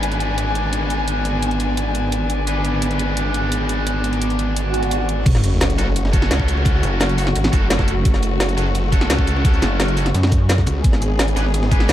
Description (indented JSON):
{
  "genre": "dark technical drum and bass",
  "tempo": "172 BPM",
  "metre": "4/4",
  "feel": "straight",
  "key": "F# minor",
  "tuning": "A4 = 440 Hz",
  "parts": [
    { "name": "warm studio string section", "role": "sustained chords", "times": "0.0-11.9 s", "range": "C#3 to G#5", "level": "-24 LUFS", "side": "left 1 dB", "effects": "sidechain pumping" },
    { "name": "tight distorted guitar", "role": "stabs", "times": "0.0-11.9 s", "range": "C#4 to B4", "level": "-26 LUFS", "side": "equal", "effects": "distortion, dub echo" },
    { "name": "snarling distorted saw bass", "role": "bass", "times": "0.0-11.9 s", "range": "F#1 to D2", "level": "-21 LUFS", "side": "equal", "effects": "distortion, tube saturation, sidechain pumping" },
    { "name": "drum and bass drum kit", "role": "drums", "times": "0.0-11.9 s", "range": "crash cymbal, hi-hat, shaker, snare drum", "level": "-23 LUFS", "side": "equal", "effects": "overdrive" },
    { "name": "swell and sub drop", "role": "sound effects", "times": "4.7-6.7 s", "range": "none", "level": "-23 LUFS", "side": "right 1 dB", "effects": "none" },
    { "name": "crunchy breakbeat drum kit", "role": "drums", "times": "5.3-11.9 s", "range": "ride cymbal, snare drum", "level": "-33 LUFS", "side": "equal", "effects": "none" },
    { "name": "electronic kick drum", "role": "drums", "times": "5.3-11.8 s", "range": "none", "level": "-17 LUFS", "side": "equal", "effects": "overdrive" },
    { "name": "pulsing pluck wobble bass", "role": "bass", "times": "6.8-7.5, 9.6-10.7 s", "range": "F#1 to F#2", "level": "-18 LUFS", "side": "equal", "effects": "chorus" }
  ],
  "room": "light reverb",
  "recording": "dark, warm production",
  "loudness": "-16 LUFS",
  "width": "side -12 dB against mid",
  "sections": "0.0-5.3 A section; 5.3-11.9 B section",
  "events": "swell 4.7-5.3; drop 5.3-11.9; impact 5.3-6.7",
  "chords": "0.0 G#dim; 5.3 F#m; 10.8 G#dim"
}